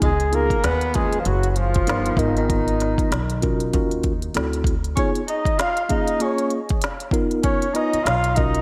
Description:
hip hop, jazz-hop; 97 BPM; 4/4; swing 59% on 16ths; A4 = 440 Hz
breathy flugelhorn; melody; 0.0-8.6 s; D#4 to E#5; -27 LUFS; equal; analog delay
growling tenor saxophone; second line; 0.0-8.6 s; D#3 to E#4; -30 LUFS; equal
mellow tine electric piano; accompaniment; 0.0-8.6 s; A#3 to B4; -28 LUFS; equal
upright bass; bass; 0.0-8.6 s; F#1 to D#2; -26 LUFS; equal
organic electronic drum kit; drums; 0.0-8.6 s; hi-hat, kick drum, snare drum; -26 LUFS; equal
moderate plate reverb, RT60 1.9 s, studio reverb; dreamy mix soaked in reverb; -21 LUFS; mono
0.0-8.6 A section
0.0 C#9; 1.3 F#maj7; 2.2 G#m69; 3.7 D#m9; 4.3 D9; 5.0 C#9; 6.2 A#m7; 7.1 Bmaj9#11
| 0.02 0.64 1.26 1.87 | 2.49 3.11 3.73 4.35 | 4.97 5.59 6.20 6.82 | 7.44 8.06

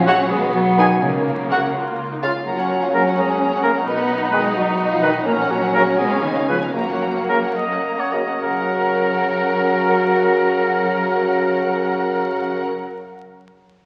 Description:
classical, dramatic, fast romantic movement for symphony orchestra; 69-87 BPM (dotted quarters); 6/8; straight; F# major; A4 = 440 Hz
dark clarinet; second line; 0.0-12.7 s; C#4 to B4; -28 LUFS; equal
dark symphonic violin section; second line; 0.0-12.7 s; A#3 to A#4; -27 LUFS; equal
hollow concert flute; second line; 0.0-12.7 s; C#5 to B5; -29 LUFS; equal
rich studio cello section; bass; 0.0-12.7 s; C#3 to B3; -29 LUFS; equal
warm chamber double bass section; bass; 0.0-12.7 s; A#1 to F#2; -35 LUFS; equal
warm symphonic violin section; melody; 0.1-12.7 s; D#5 to A#5; -29 LUFS; equal
warm oboe; second line; 0.1-12.7 s; E#4 to D#5; -26 LUFS; equal
warm bassoon; accompaniment; 0.1-12.7 s; C#3 to D#3; -29 LUFS; equal
warm chamber viola section; accompaniment; 0.1-12.7 s; A#3 to D#5; -31 LUFS; equal
dark French horn section; sustained chords; 0.1-12.6 s; C#4 to B4; -29 LUFS; equal
timpani; percussion; 1.0-1.7, 8.4-13.3 s; F#2 to C#3; -36 LUFS; equal
wet concert hall reverb, RT60 2.0 s; very old 78 rpm record, vinyl crackle; -19 LUFS; mono
0.0-8.4 A section; 8.4-11.9 B section
slowing down 4.6-8.4
0.3 G#m7/B; 1.0 F#/C#; 1.7 C#; 2.5 F#; 3.9 B; 5.3 F#/A#; 6.0 C#7; 6.8 F#
0.31 | 1.02 1.75 | 2.46 3.17 | 3.87 4.57 | 5.27 5.99 | 6.75 7.57 | 8.43 9.29 | 10.16 11.03

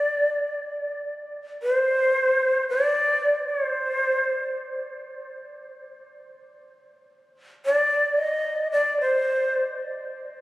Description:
japanese traditional; 55 BPM; 2/4; rubato; C hirajoshi; A4 = 440 Hz
breathy shakuhachi; solo; 0.0-9.8 s; C5 to Eb5; -22 LUFS; equal
moderate cathedral reverb, RT60 6.2 s; recorded on a phone in the room, studio reverb, compression; -21 LUFS; side -17 dB against mid
0.0-6.0 A section; 6.0-10.4 B section
0.53 | 1.61 2.68 | 3.77 4.88 | 6.00 7.11 | 8.21 9.30

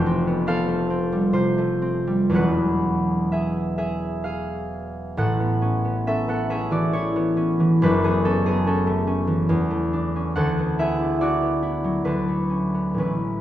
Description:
classical, solo harp piece; 57-74 BPM; 3/4; rubato; A major; A4 = 440 Hz
concert harp; solo; 0.0-13.4 s; E1 to G5; -20 LUFS; equal
wet recital hall reverb, RT60 1.5 s; heard from further back in the room; -20 LUFS; side -12 dB against mid
0.0-13.4 A section
0.0 Fadd9; 2.3 E69; 5.2 A69; 7.8 F#m7; 9.5 E11; 10.4 D69; 12.0 Dmaj7
0.47 1.33 | 2.34 3.31 4.24 | 5.18 6.07 6.93 | 7.80 8.65 9.46 | 10.35 11.20 12.05 | 12.96

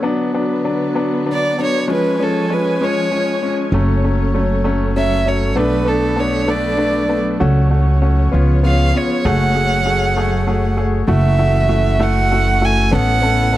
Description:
six-eight pop ballad; 65 BPM (dotted quarters); 6/8; straight; F# minor; A4 = 440 Hz
clear grand piano; accompaniment; 0.0-13.6 s; E#3 to A4; -19 LUFS; left 2 dB
warm studio string section; sustained chords; 0.0-13.6 s; C#3 to G#5; -24 LUFS; right 2 dB
warm violin; melody; 1.3-13.6 s; A4 to G#5; -19 LUFS; right 2 dB
upright bass; bass; 3.7-13.6 s; F#1 to C#2; -16 LUFS; equal
little or no reverb; dry, close 1970s-style studio recording; -14 LUFS; side -14 dB against mid
0.0-11.1 A section; 11.1-13.6 B section
0.0 Bm; 1.9 C#; 3.7 F#m; 5.6 Bm7; 7.4 F#m/C#; 8.3 C#7; 9.2 F#madd9; 11.1 F#m7; 12.9 Aadd9
| 0.04 0.96 | 1.88 2.80 | 3.72 4.64 | 5.56 6.48 | 7.40 8.32 | 9.24 10.16 | 11.08 12.00 | 12.92

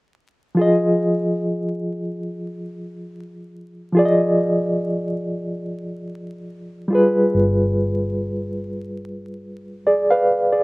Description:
R&B; 71 BPM; 4/4; swing 56% on 16ths; A4 = 440 Hz
barky reed electric piano; accompaniment; 0.5-10.6 s; F3 to F5; -19 LUFS; equal; overdrive, fast tremolo
vintage muted fingered electric bass; bass; 7.3-10.6 s; G1; -24 LUFS; equal
little or no reverb; recorded outdoors, with no room sound, vinyl crackle; -18 LUFS; side -23 dB against mid
0.6-10.6 A section
0.6 Fm7; 6.9 G7b9
| 0.56 1.40 2.25 3.10 | 3.94 4.79 5.63 6.47 | 7.32 8.16 9.01 9.86

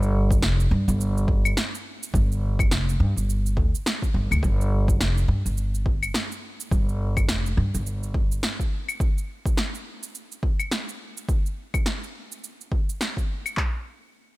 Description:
organic downtempo; 105 BPM; 4/4; swing 59% on 16ths; A4 = 440 Hz
upright bass; bass; 0.0-8.4 s; F1 to G2; -22 LUFS; equal; tube saturation, sidechain pumping
electronic shaker, snare drum and claves; drums; 0.0-13.6 s; -29 LUFS; equal
deep house drum kit; drums; 0.3-13.7 s; handclaps, kick drum; -24 LUFS; equal
little or no reverb; -22 LUFS; side -19 dB against mid
0.0-4.4 A section; 4.4-13.6 B section
0.43 1.00 1.57 | 2.14 2.71 3.28 3.85 | 4.43 5.00 5.57 6.14 | 6.71 7.28 7.86 8.43 | 9.00 9.57 10.14 10.71 | 11.28 11.86 12.43 13.00 | 13.57

